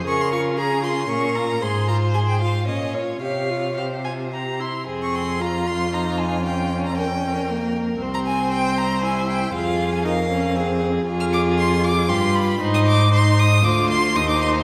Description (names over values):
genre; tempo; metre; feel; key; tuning
quick classical-period movement for string quartet; 116 BPM; 3/4; rubato; F minor; A4 = 440 Hz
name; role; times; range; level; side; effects
rich violin; second line; 0.0-14.6 s; F4 to C6; -29 LUFS; equal; none
warm viola; accompaniment; 0.0-14.6 s; Bb3 to Ab4; -28 LUFS; equal; none
clear cello; bass; 0.0-14.6 s; C2 to Db3; -25 LUFS; equal; none
rich violin; melody; 0.1-14.5 s; C5 to F6; -27 LUFS; equal; none
room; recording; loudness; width
wet scoring stage reverb, RT60 1.6 s; none; -21 LUFS; mono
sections
0.0-4.9 A section; 4.9-14.6 B section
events
none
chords
0.1 Db; 1.1 Bbm; 1.6 Fm/Ab; 2.7 Bbm; 3.2 Csus4; 4.3 C; 4.9 Fm; 6.5 Gdim/F; 8.0 C; 9.5 Fm; 11.1 Fm6; 12.1 G7; 12.6 Ab; 13.6 Dm7